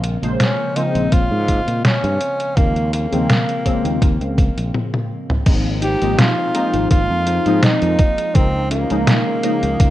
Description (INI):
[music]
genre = vaporwave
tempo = 83 BPM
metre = 4/4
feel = swing 53% on 16ths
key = Ab major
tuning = A4 = 440 Hz
[part]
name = bright tenor saxophone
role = melody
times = 0.0-9.9 s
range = Bb3 to G4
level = -22 LUFS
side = right 1 dB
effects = tape echo
[part]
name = warbly lo-fi synth keys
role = accompaniment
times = 0.0-9.9 s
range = Db3 to C5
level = -22 LUFS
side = left 1 dB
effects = ensemble chorus
[part]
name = fretless electric bass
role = bass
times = 0.0-9.9 s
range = Ab1 to Bb2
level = -21 LUFS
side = equal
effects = none
[part]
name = detuned 8-bit digital drum machine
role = drums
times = 0.0-9.9 s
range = crash cymbal, hi-hat, snare drum, toms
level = -19 LUFS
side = equal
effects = overdrive
[part]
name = electronic kick drum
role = drums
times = 1.1-9.9 s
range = none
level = -15 LUFS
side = equal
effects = overdrive
[part]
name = mellow electric guitar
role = riff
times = 5.8-9.9 s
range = Db4 to C5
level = -25 LUFS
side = left 4 dB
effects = analog chorus, vintage 12-bit sampler grit
[sound]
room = little or no reverb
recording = rough home demo mix, cassette tape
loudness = -15 LUFS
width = side -14 dB against mid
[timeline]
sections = 0.0-5.5 A section; 5.5-9.9 B section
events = break 4.7-5.5; drum fill 4.7-5.5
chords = 0.0 Bbm9; 2.6 Eb13sus4; 5.5 Ab6; 8.4 Db6